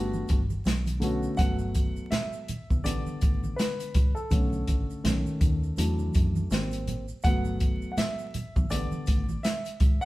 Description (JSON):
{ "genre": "hip hop, jazz-hop", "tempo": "82 BPM", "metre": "4/4", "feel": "swing 58% on 16ths", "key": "unclear", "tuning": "A4 = 440 Hz", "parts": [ { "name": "dark concert grand piano", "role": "accompaniment", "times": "0.0-10.1 s", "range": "D3 to F#5", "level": "-31 LUFS", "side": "equal", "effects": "none" }, { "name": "deep dub fingered electric bass", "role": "bass", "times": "0.0-10.0 s", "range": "G1 to F#2", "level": "-29 LUFS", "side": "equal", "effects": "none" }, { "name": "congas and maracas", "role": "percussion", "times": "0.1-10.1 s", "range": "none", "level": "-38 LUFS", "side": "right 2 dB", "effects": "none" }, { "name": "open jazz drum kit", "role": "drums", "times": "0.3-10.0 s", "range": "hi-hat, kick drum, snare drum", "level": "-27 LUFS", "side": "equal", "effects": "none" } ], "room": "light reverb", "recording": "band playing live in one room, vinyl crackle", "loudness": "-25 LUFS", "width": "side -18 dB against mid", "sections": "0.0-1.4 A section; 1.4-10.1 B section", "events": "grand piano solo 1.4-10.1", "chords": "0.0 Gmaj9; 0.7 Bm9; 1.4 Gmaj7; 2.9 A9sus4; 4.3 Bm9; 5.0 B7; 5.8 E9sus4; 6.5 G#maj7; 7.2 Gmaj7; 8.7 A9sus4" }